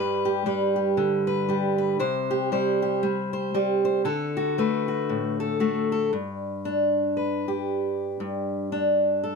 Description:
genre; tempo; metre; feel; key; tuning
folk; 116 BPM; 4/4; swing 58% on 8ths; G major; A4 = 441 Hz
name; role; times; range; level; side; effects
fingerpicked steel-string acoustic guitar; solo; 0.0-9.4 s; G2 to C5; -23 LUFS; equal; none
room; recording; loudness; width
little or no reverb; close, detailed microphones; -23 LUFS; side -4 dB against mid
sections
0.0-6.1 A section; 6.1-9.4 B section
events
none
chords
0.0 G; 2.0 C5; 4.1 D; 6.1 G; 8.2 Em7/G (rootless)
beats
0.46 0.97 1.49 | 2.00 2.52 3.03 3.55 | 4.06 4.58 5.09 5.61 | 6.12 6.64 7.16 7.67 | 8.19 8.71 9.22

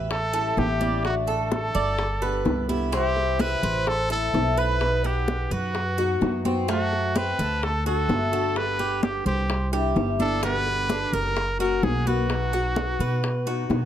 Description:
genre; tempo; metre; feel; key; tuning
latin, Cuban son and guajira; 128 BPM; 4/4; straight; unclear; A4 = 440 Hz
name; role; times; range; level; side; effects
fingerpicked acoustic archtop guitar; accompaniment; 0.0-13.9 s; B2 to G4; -30 LUFS; left 4 dB; none
Cuban tres; arpeggios; 0.0-13.9 s; A3 to F#5; -30 LUFS; right 3 dB; tape echo
upright bass; bass; 0.0-13.9 s; F#1 to B2; -27 LUFS; equal; none
bright trumpet; melody; 0.1-13.7 s; F#4 to B4; -28 LUFS; equal; none
bongos; percussion; 0.1-13.9 s; none; -32 LUFS; left 5 dB; none
congas; percussion; 0.1-13.9 s; none; -29 LUFS; equal; none
room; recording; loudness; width
little or no reverb; close, detailed microphones; -22 LUFS; side -10 dB against mid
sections
0.0-13.9 A section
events
none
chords
0.1 A7; 1.0 D/A; 2.0 G; 2.9 C; 3.9 Am; 4.8 B; 6.7 F#dim; 7.6 D; 8.6 Gadd9; 9.5 Cadd9; 10.4 G; 11.4 F#; 12.3 B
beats
0.10 0.57 | 1.04 1.51 1.99 2.46 | 2.93 3.40 3.87 4.34 | 4.81 5.28 5.75 6.22 | 6.69 7.16 7.62 8.09 | 8.56 9.03 9.50 9.96 | 10.43 10.90 11.37 11.83 | 12.30 12.77 13.23 13.70

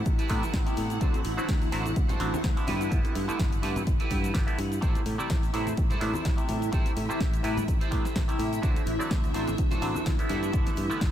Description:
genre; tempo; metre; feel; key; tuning
filtered disco house; 126 BPM; 4/4; swing 55% on 16ths; A dorian; A4 = 436 Hz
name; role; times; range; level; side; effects
string machine, full ensemble; sustained chords; 0.0-11.1 s; E4 to F#5; -34 LUFS; equal; ensemble chorus, vintage 12-bit sampler grit, sidechain pumping
modern bright fingered electric bass; bass; 0.0-11.1 s; G1 to A2; -32 LUFS; equal; tube saturation, sidechain pumping
electronic kick drum; drums; 0.1-11.1 s; none; -28 LUFS; equal; studio reverb
house drum kit; drums; 0.1-11.1 s; hi-hat, shaker, snare drum; -38 LUFS; left 1 dB; sidechain pumping on hats, studio reverb, sidechain pumping on perc
egg shaker and congas; percussion; 0.1-11.1 s; none; -41 LUFS; left 2 dB; none
clean electric guitar; riff; 0.2-11.0 s; D4 to D5; -37 LUFS; right 5 dB; analog chorus, sidechain pumping
bright clav; accompaniment; 0.3-11.1 s; C3 to G4; -34 LUFS; equal; phaser, sidechain pumping
room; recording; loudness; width
light reverb; none; -25 LUFS; side -11 dB against mid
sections
0.0-11.1 A section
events
none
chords
0.0 Am7; 2.7 G69; 4.8 Am7; 8.6 D7; 10.3 G69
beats
0.06 0.54 | 1.01 1.49 1.96 2.44 | 2.92 3.39 3.87 4.34 | 4.82 5.30 5.77 6.25 | 6.72 7.20 7.68 8.15 | 8.63 9.11 9.58 10.06 | 10.54 11.01

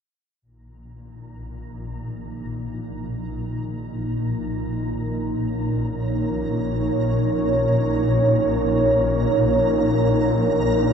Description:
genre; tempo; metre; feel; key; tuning
dark ambient drone; free time; none; none; unclear; A4 = 440 Hz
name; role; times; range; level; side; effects
deep dark ambient pad; sustained chords; 2.0-10.9 s; Eb4 to Db5; -22 LUFS; right 1 dB; chorus, built-in reverb
swarming drone; drone; 0.9-10.9 s; Bb1 to Bb2; -24 LUFS; left 1 dB; built-in reverb
flickering grainy texture; texture; 1.2-10.9 s; Bb5; -38 LUFS; right 2 dB; built-in reverb, analog chorus
room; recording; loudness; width
wet plate reverb, RT60 2.4 s; dreamy mix soaked in reverb, cassette tape; -19 LUFS; side -7 dB against mid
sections
0.4-10.9 A section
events
fade-in on synth texture 0.4-10.9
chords
0.4 Bbm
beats
free time

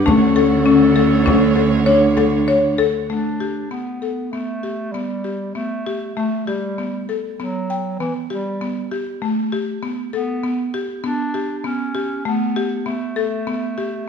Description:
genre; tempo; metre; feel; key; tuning
contemporary instrumental, chamber music in an uneven meter; 98 BPM; 5/4; straight; A mixolydian; A4 = 440 Hz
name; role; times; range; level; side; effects
vibraphone with medium mallets; second line; 0.0-2.8 s; C#4 to D4; -19 LUFS; left 3 dB; none
dark chamber string section; sustained chords; 0.0-3.1 s; D3 to F#5; -26 LUFS; right 2 dB; none
rich cello; bass; 0.0-3.1 s; D2; -19 LUFS; right 5 dB; none
breathy clarinet; melody; 0.1-14.1 s; E3 to A4; -26 LUFS; right 1 dB; none
buzzing marimba with medium hard mallets; arpeggios; 0.1-14.0 s; A3 to G5; -20 LUFS; left 3 dB; none
frame drum; percussion; 0.1-2.9 s; none; -25 LUFS; equal; none
room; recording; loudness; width
light reverb; minimal, uncompressed stereo recording; -17 LUFS; side -6 dB against mid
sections
0.0-3.1 A section; 3.1-14.1 B section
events
none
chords
0.1 Dmaj7; 3.1 Asus2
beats
| 0.07 0.67 1.27 1.88 2.49 | 3.10 3.72 4.34 4.95 5.57 | 6.18 6.79 7.40 8.01 8.62 | 9.22 9.83 10.44 11.05 11.65 | 12.26 12.87 13.47 14.09

